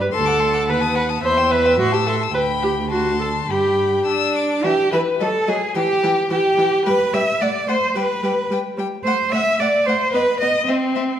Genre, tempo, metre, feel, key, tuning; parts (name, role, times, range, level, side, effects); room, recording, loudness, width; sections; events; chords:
quick classical-period movement for string quartet; 109 BPM; 2/4; straight; G major, E minor from 4.6 s; A4 = 439 Hz
warm viola; accompaniment; 0.0-11.0 s; E3 to C5; -21 LUFS; equal
rich cello; bass; 0.0-11.2 s; D2 to E5; -20 LUFS; right 3 dB
warm violin; melody; 0.1-11.0 s; D#5 to E6; -27 LUFS; left 9 dB
rich violin; second line; 0.1-11.2 s; C4 to A5; -24 LUFS; left 4 dB
wet recital hall reverb, RT60 1.4 s; -16 LUFS; side -10 dB against mid
0.0-4.6 A section; 4.6-11.2 B section
0.1 D7; 0.7 B7/D#; 1.2 Em; 1.8 Am; 2.4 G/D; 2.9 D7; 3.5 G; 4.6 Em; 5.2 D#dim/F# (rootless); 5.8 Em; 6.9 G; 7.4 F#dim; 8.0 G; 9.1 F#dim/A; 10.1 B; 10.7 N.C.